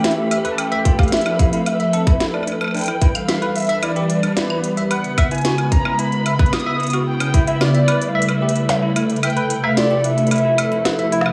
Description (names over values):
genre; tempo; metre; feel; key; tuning
IDM; 111 BPM; 4/4; straight; unclear; A4 = 440 Hz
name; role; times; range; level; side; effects
warbly nostalgic lead; melody; 0.0-11.1 s; B4 to D#6; -25 LUFS; equal; tremolo, lush chorus, tape echo
hollow soft pad; sustained chords; 0.0-11.3 s; C3 to A4; -23 LUFS; equal; ensemble chorus
bell-like tine electric piano; arpeggios; 0.0-11.3 s; C#4 to E5; -27 LUFS; equal; subtle chorus, tape echo
organic electronic drum kit; drums; 0.0-11.3 s; hi-hat, snare drum, woodblock; -26 LUFS; equal; none
flickering grainy texture; texture; 0.0-11.3 s; B4; -34 LUFS; equal; built-in reverb
electronic kick drum; drums; 0.9-7.4 s; none; -18 LUFS; equal; none
room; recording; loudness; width
wet plate reverb, RT60 1.5 s, digital ambience; dreamy mix soaked in reverb, small room ambience; -18 LUFS; mono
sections
0.0-11.3 A section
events
kick drops out 9.2-11.3; drum fill 10.9-11.3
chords
0.0 A7; 0.6 Fmaj7; 2.7 Em7; 4.9 C#m7; 7.1 A7; 9.2 Fmaj7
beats
0.04 | 0.58 1.12 1.66 2.20 | 2.75 3.29 3.83 4.37 | 4.91 5.45 5.99 6.53 | 7.07 7.61 8.15 8.69 | 9.23 9.77 10.31 10.85